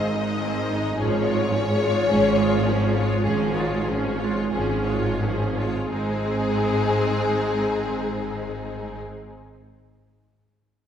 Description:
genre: classical, slow romantic movement for string orchestra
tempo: 42-55 BPM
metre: 4/4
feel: rubato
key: Ab major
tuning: A4 = 444 Hz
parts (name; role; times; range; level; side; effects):
- warm symphonic violin section; melody; 0.0-9.0 s; Ab4 to Eb5; -26 LUFS; left 4 dB; none
- warm symphonic violin section; second line; 0.0-9.0 s; Eb4 to Eb5; -30 LUFS; left 2 dB; none
- rich symphonic viola section; accompaniment; 0.0-9.0 s; Eb3 to F4; -27 LUFS; right 1 dB; none
- rich symphonic double bass section; bass; 0.0-9.0 s; Ab1; -29 LUFS; right 3 dB; none
- warm symphonic cello section; bass; 0.0-9.0 s; Ab2; -27 LUFS; equal; none
room: wet scoring stage reverb, RT60 1.9 s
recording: heard from further back in the room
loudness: -21 LUFS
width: side -9 dB against mid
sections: 0.0-5.9 A section; 5.9-10.9 B section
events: slowing down 0.0-5.9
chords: 0.0 Ab; 1.0 Db/Ab; 5.9 Ab

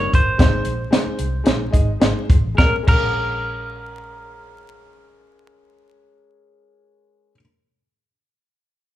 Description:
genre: uptempo 1960s-style soul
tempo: 103-117 BPM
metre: 4/4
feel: straight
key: Bb minor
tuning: A4 = 440 Hz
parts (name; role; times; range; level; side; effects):
- semi-hollow electric guitar; melody; 0.0-7.4 s; Bb4 to Db5; -23 LUFS; right 1 dB; none
- warm upright piano; accompaniment; 0.0-7.4 s; G3 to Eb5; -27 LUFS; left 3 dB; none
- vintage muted fingered electric bass; bass; 0.0-7.4 s; G1 to C2; -25 LUFS; equal; none
- compact cocktail drum kit; drums; 0.1-3.0 s; crash cymbal, hi-hat, kick drum, snare drum; -17 LUFS; equal; none
room: light reverb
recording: band playing live in one room, vinyl crackle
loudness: -16 LUFS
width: side -13 dB against mid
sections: 0.0-2.6 A section; 2.6-7.2 B section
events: slowing down 0.0-2.6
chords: 0.4 Ab; 2.6 Bbm7

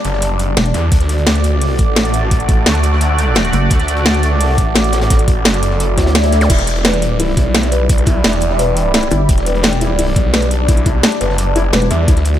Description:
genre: dark technical drum and bass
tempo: 172 BPM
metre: 4/4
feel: straight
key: E minor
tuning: A4 = 440 Hz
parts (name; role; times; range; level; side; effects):
- sweeping resonant pad; sustained chords; 0.0-12.4 s; G3 to D5; -19 LUFS; right 1 dB; chorus, sidechain pumping
- snarling distorted saw bass; bass; 0.0-12.4 s; E1 to E2; -16 LUFS; equal; distortion, overdrive
- crunchy breakbeat drum kit; drums; 0.0-12.4 s; hi-hat, snare drum; -28 LUFS; equal; high-pass filter on hats, high-pass filter on snare, high-pass filter on room
- drum and bass drum kit; drums; 0.0-12.3 s; crash cymbal, hi-hat, snare drum; -16 LUFS; equal; none
- pulsing pluck wobble bass; bass; 0.6-0.7, 3.5-3.7, 6.0-6.5, 9.1-9.3, 11.7-11.9 s; E1 to D2; -14 LUFS; equal; chorus
- electronic kick drum; drums; 0.9-12.2 s; none; -14 LUFS; equal; none
- swell and zap; sound effects; 5.9-6.5 s; none; -21 LUFS; left 2 dB; none
- felt-muted upright piano; arpeggios; 6.5-12.1 s; E4 to E5; -22 LUFS; left 3 dB; sidechain pumping, ping-pong delay
room: light reverb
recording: none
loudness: -11 LUFS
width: side -11 dB against mid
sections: 0.0-12.4 A section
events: swell 5.9-6.5; kick drops out 6.2-6.5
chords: 0.0 Em7; 0.9 D; 6.5 Em7

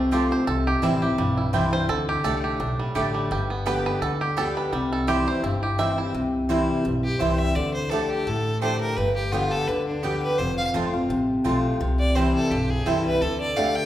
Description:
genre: bluegrass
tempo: 170 BPM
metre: 4/4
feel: swing 55% on 8ths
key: C major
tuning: A4 = 440 Hz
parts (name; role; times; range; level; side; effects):
- bluegrass banjo; melody; 0.0-6.1 s; G3 to E5; -27 LUFS; right 3 dB; none
- picked steel-string acoustic guitar; accompaniment; 0.0-13.9 s; F2 to G4; -24 LUFS; left 1 dB; none
- upright bass; bass; 0.0-13.7 s; F1 to D2; -30 LUFS; equal; none
- mandolin; stabs; 0.1-13.7 s; A3 to A5; -31 LUFS; right 4 dB; none
- clear fiddle; melody; 7.0-13.9 s; D4 to G5; -26 LUFS; equal; none
room: wet recital hall reverb, RT60 1.7 s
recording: recorded in a church or concert hall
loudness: -21 LUFS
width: side -12 dB against mid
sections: 0.0-6.1 A section; 6.1-13.9 B section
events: five-string banjo solo 0.0-6.1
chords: 0.5 C; 1.9 Dsus4; 3.3 G; 4.7 C; 7.6 Dsus4; 9.0 G; 10.4 F; 11.8 C; 13.2 Dsus4

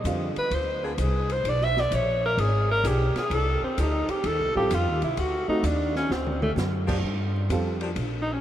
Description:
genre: jazz, big band swing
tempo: 129 BPM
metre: 4/4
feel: swing 67% on 8ths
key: F mixolydian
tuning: A4 = 440 Hz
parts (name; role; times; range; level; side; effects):
- upright bass; bass; 0.0-8.4 s; G#1 to G2; -27 LUFS; equal; none
- dark baby grand piano; accompaniment; 0.1-0.3, 4.6-7.8 s; D3 to A4; -33 LUFS; right 2 dB; none
- open jazz drum kit; drums; 0.1-8.1 s; crash cymbal, hi-hat, kick drum, ride cymbal, snare drum, toms; -34 LUFS; left 1 dB; none
- clear alto saxophone; melody; 0.4-8.4 s; A3 to E5; -26 LUFS; equal; none
- warm saxophone section; sustained chords; 0.8-7.9 s; D3 to Ab4; -38 LUFS; left 1 dB; none
room: wet huge ambient reverb, RT60 8.0 s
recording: in a vast, echoing space, vinyl crackle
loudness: -23 LUFS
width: side -11 dB against mid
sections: 0.0-8.4 A section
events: alto saxophone solo 0.0-8.4; drum fill 6.1-6.6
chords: 0.0 Bb9 (rootless); 1.5 B5; 3.3 F9; 5.2 D(b9); 7.0 Gm7

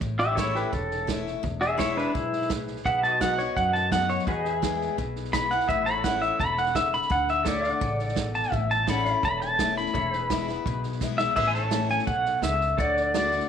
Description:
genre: honky-tonk and classic country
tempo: 169 BPM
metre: 4/4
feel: straight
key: A major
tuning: A4 = 440 Hz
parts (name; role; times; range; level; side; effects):
- picked steel-string acoustic guitar; accompaniment; 0.0-13.5 s; E2 to F#4; -33 LUFS; left 11 dB; none
- upright bass; bass; 0.0-13.4 s; E1 to F#2; -33 LUFS; equal; none
- vintage drum kit; drums; 0.0-13.4 s; crash cymbal, hi-hat, kick drum, snare drum; -32 LUFS; right 5 dB; none
- pedal steel guitar; melody; 0.2-13.5 s; D4 to B5; -25 LUFS; equal; slapback echo
- pedal steel guitar; sustained chords; 0.4-13.5 s; F#4 to F#5; -34 LUFS; equal; none
room: moderate spring reverb, RT60 1.2 s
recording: 1960s-style stereo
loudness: -23 LUFS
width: side -8 dB against mid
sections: 0.0-11.4 A section; 11.4-13.5 B section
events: pedal steel guitar solo 0.0-11.4; drum fill 11.0-11.4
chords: 0.0 A; 1.4 E; 2.9 B; 4.3 E; 5.7 A; 7.1 D; 8.5 A; 10.0 E; 11.4 A; 12.8 D

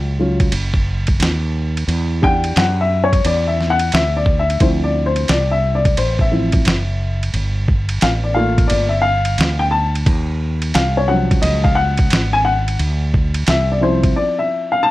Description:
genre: hip hop, jazz-hop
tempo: 88 BPM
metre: 4/4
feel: swing 66% on 16ths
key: unclear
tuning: A4 = 441 Hz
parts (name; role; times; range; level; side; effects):
- dark upright piano; accompaniment; 0.0-14.9 s; F3 to A5; -18 LUFS; left 2 dB; plate reverb
- fretless electric bass; bass; 0.0-14.1 s; Gb1 to F#2; -18 LUFS; equal; wide subtle chorus
- dusty soul sampler-style drum kit; drums; 0.4-14.1 s; hi-hat, kick drum, ride cymbal, snare drum; -19 LUFS; right 1 dB; overdrive
room: light reverb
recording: none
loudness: -14 LUFS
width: side -17 dB against mid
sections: 0.0-14.9 A section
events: upright piano solo 0.0-14.9; break 14.2-14.9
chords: 0.0 Ebm9; 1.9 Em9; 4.6 Dm9; 7.3 Gm9; 10.1 Ebm9; 12.8 Dm9

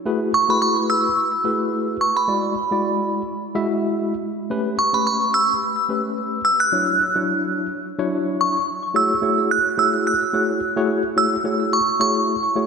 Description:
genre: funk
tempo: 108 BPM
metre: 4/4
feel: swing 56% on 16ths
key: F# minor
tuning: A4 = 440 Hz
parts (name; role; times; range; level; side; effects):
- tine electric piano; accompaniment; 0.1-12.7 s; F#3 to E5; -22 LUFS; left 2 dB; overdrive, fast stereo tremolo
- glassy synth bell; melody; 0.3-12.5 s; B5 to F#6; -19 LUFS; right 2 dB; chorus, phaser, analog delay
room: wet lush hall reverb, RT60 2.7 s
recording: dreamy mix soaked in reverb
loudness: -18 LUFS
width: side -6 dB against mid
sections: 0.0-8.9 A section; 8.9-12.7 B section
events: none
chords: 0.1 F#m11; 2.3 E9; 4.5 A9; 6.7 Dmaj9; 8.9 F#m9

